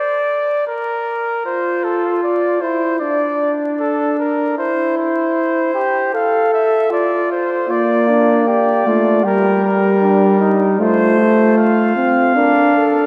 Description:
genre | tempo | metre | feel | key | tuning
classical, imitative canzona for brass ensemble | 77 BPM | 4/4 | straight | unclear | A4 = 439 Hz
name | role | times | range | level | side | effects
clear trumpet | melody | 0.0-13.1 s | A4 to F5 | -20 LUFS | equal | none
mellow flugelhorn | second line | 1.5-13.1 s | D4 to Bb4 | -21 LUFS | equal | none
warm trombone | accompaniment | 7.7-13.1 s | G3 to D4 | -16 LUFS | equal | none
room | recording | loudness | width
wet church reverb, RT60 3.5 s | vinyl crackle | -16 LUFS | mono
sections
0.0-13.1 A section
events
none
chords
0.0 N.C.; 1.5 F; 3.0 D5; 4.6 C/E; 6.1 F/A; 7.7 Bb; 9.3 Gm; 10.8 F/A; 12.4 Bb/D

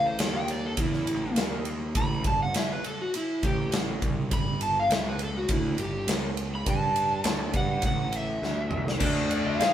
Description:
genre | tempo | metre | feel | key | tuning
blues rock power trio and southern rock | 102 BPM | 4/4 | straight | unclear | A4 = 437 Hz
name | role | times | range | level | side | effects
overdriven slide guitar | melody | 0.0-9.7 s | E4 to B5 | -29 LUFS | equal | none
fuzz picked electric bass | bass | 0.0-9.7 s | G1 to G#2 | -32 LUFS | equal | overdrive
huge arena drum kit | drums | 0.2-9.7 s | crash cymbal, kick drum, ride cymbal, snare drum, toms | -28 LUFS | equal | none
biting overdriven guitar | riff | 9.0-9.7 s | D3 to G#4 | -27 LUFS | left 1 dB | none
room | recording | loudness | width
moderate stone room reverb, RT60 1.2 s | band playing live in one room | -25 LUFS | side -10 dB against mid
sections
0.0-9.0 A section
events
electric slide guitar solo 0.0-9.0; drum fill 8.4-9.0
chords
0.2 Ebmaj7#11; 0.8 A5; 1.4 N.C.; 2.0 Gsus2; 4.3 G; 4.9 C#madd11; 5.5 G5; 6.1 N.C.; 6.7 Gsus2; 7.3 D; 7.8 A5; 9.0 D5

